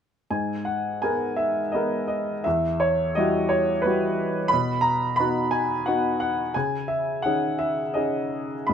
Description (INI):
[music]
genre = classical, lyrical solo piano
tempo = 86 BPM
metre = 3/4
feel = uneven beats, rubato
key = G# minor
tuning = A4 = 440 Hz
[part]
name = clear baby grand piano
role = solo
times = 0.3-8.7 s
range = E2 to B5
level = -22 LUFS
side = equal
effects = none
[sound]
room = light reverb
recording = minimal, uncompressed stereo recording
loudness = -22 LUFS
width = side -8 dB against mid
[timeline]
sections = 0.3-8.7 A section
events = none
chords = 0.3 G#madd9; 2.5 Emadd9; 4.5 B; 6.5 C#sus2